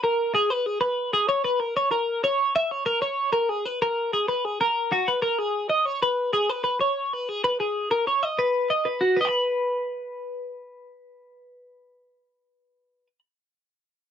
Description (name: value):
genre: rock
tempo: 63 BPM (dotted quarters)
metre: 6/8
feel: straight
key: B major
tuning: A4 = 440 Hz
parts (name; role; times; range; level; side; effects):
- twelve-string electric guitar; solo; 0.0-13.2 s; F#4 to B5; -22 LUFS; equal; wide subtle chorus
room: little or no reverb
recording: none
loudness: -22 LUFS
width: side -8 dB against mid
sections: 0.0-5.4 A section; 5.4-9.2 B section; 9.2-13.0 C section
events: none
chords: 0.0 N.C.; 1.6 A#m; 3.5 B5; 5.4 B69; 9.2 N.C.